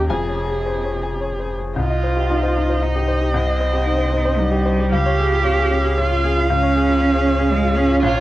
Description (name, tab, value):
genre	neoclassical piano and strings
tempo	106-118 BPM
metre	3/4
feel	rubato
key	unclear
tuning	A4 = 436 Hz
part	warm cello	second line	0.0-8.2 s	C3 to G4	-21 LUFS	right 3 dB	cassette tape
part	clear upright piano	accompaniment	0.0-8.2 s	Bb1 to C6	-22 LUFS	left 3 dB	cassette tape
part	warm viola	accompaniment	0.0-8.2 s	Ab4 to F5	-24 LUFS	right 1 dB	cassette tape
part	sub bass with octave	bass	0.0-8.2 s	F1 to Eb2	-21 LUFS	equal	none
room	light reverb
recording	home recording on cassette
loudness	-16 LUFS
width	side -15 dB against mid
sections	0.0-1.8 A section; 1.8-8.2 B section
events	none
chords	0.1 Dbmaj7/F; 1.8 Cm; 4.9 Db